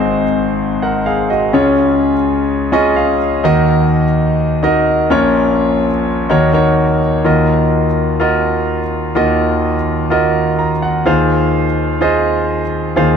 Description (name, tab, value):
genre	pop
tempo	126 BPM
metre	4/4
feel	straight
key	Eb dorian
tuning	A4 = 441 Hz
part	clear concert grand piano	solo	0.0-13.2 s	Ab1 to Db6	-12 LUFS	equal	none
room	moderate lush hall reverb, RT60 2.7 s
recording	dark, warm production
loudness	-12 LUFS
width	side -7 dB against mid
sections	0.0-7.3 A section; 7.3-13.2 B section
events	grand piano fill 2.5-3.4, 10.3-11.1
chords	0.0 Ab; 1.5 Db; 3.4 Ebm; 5.1 Bbm; 6.3 Ebm7; 7.3 Ebmadd9; 11.1 Fm/Eb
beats	0.11 0.58 1.06 | 1.54 2.01 2.49 2.97 | 3.44 3.92 4.39 4.87 | 5.35 5.82 6.30 6.78 | 7.25 7.73 8.20 8.68 | 9.16 9.63 10.11 10.59 | 11.06 11.54 12.01 12.49 | 12.97